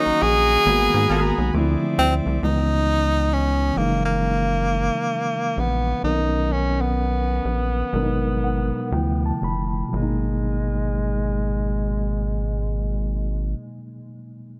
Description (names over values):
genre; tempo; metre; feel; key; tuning
R&B, neo-soul; 58-68 BPM; 4/4; swing 64% on 16ths; G# minor; A4 = 438 Hz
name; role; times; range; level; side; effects
warm tenor saxophone; melody; 0.0-13.6 s; G#3 to G#4; -26 LUFS; equal; low-pass filter
archtop guitar, miked and amplified; second line; 0.0-1.4 s; B3 to A#4; -33 LUFS; equal; wah
mellow tine electric piano; accompaniment; 0.0-14.6 s; B2 to B5; -28 LUFS; equal; low-pass filter
pipe organ, principal; sustained chords; 0.0-2.4 s; C5 to D6; -33 LUFS; equal; none
rubbery square bass; bass; 0.1-13.5 s; F1 to G#2; -26 LUFS; equal; none
room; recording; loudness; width
light reverb, studio reverb; none; -22 LUFS; mono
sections
0.0-2.4 A section; 2.4-9.9 B section; 9.9-14.1 C section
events
slowing down 2.4-9.9; filter sweep 2.4-9.9; tine electric piano fill 7.9-9.9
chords
0.0 D#m7; 0.7 G#m9; 1.5 Dm9; 2.4 C#m9; 3.8 F#13; 6.0 Bmaj9; 7.9 G#m9; 8.9 Dm9; 9.9 G#m9